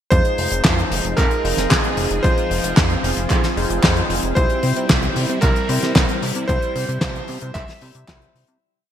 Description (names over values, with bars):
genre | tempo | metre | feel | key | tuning
italo disco | 113 BPM | 4/4 | straight | F minor | A4 = 436 Hz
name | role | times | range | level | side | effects
bright electric grand piano | melody | 0.1-8.3 s | Ab4 to E5 | -24 LUFS | right 1 dB | ping-pong delay
warm analog pad | sustained chords | 0.1-8.6 s | F3 to Ab4 | -26 LUFS | right 1 dB | chorus
barky tine electric piano | stabs | 0.1-8.6 s | G3 to C5 | -28 LUFS | left 4 dB | ping-pong delay
chorused synth bass | bass | 0.1-8.6 s | F1 to C3 | -24 LUFS | equal | tube saturation
damped 70s drum kit | drums | 0.1-8.6 s | handclaps, hi-hat, snare drum | -20 LUFS | left 1 dB | gated reverb
electronic kick drum | drums | 0.1-8.2 s | none | -20 LUFS | equal | none
room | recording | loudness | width
moderate lush hall reverb, RT60 1.8 s | bright 1980s-style digital production | -16 LUFS | side -10 dB against mid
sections
0.1-8.6 chorus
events
fade-out 5.8-8.6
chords
0.1 Fm7; 4.4 C